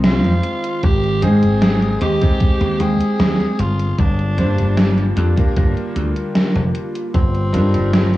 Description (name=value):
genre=vaporwave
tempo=76 BPM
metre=4/4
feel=straight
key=unclear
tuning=A4 = 440 Hz
part: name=growling tenor saxophone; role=melody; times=0.0-8.2 s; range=C4 to Ab4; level=-24 LUFS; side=equal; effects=vintage 12-bit sampler grit, tape echo, plate reverb
part: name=bright electric grand piano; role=accompaniment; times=0.0-8.2 s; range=G3 to G5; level=-22 LUFS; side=left 1 dB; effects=lush chorus, cassette tape
part: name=warbly tape-like pad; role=sustained chords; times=0.0-8.2 s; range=D3 to G5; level=-26 LUFS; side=right 1 dB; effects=chorus, built-in reverb, vintage 12-bit sampler grit, cassette tape
part: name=dry thumbed slap bass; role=bass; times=0.0-8.2 s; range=F1 to Ab2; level=-17 LUFS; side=equal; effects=transformer saturation
part: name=gated 80s digital drum machine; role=drums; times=0.0-8.2 s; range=hi-hat, snare drum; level=-18 LUFS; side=equal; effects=gated reverb, gated reverb snare, overdrive, cassette tape
part: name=electronic kick drum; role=drums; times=0.8-7.3 s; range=none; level=-16 LUFS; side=equal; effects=overdrive, cassette tape
room=light reverb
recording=home recording on cassette, small room ambience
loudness=-14 LUFS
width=side -16 dB against mid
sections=0.0-8.2 A section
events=none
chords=0.0 Fm7; 0.8 Abmaj7; 3.6 Gm7; 7.1 Ebmaj9/G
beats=0.04 | 0.83 1.62 2.41 3.19 | 3.98 4.77 5.56 6.35 | 7.14 7.93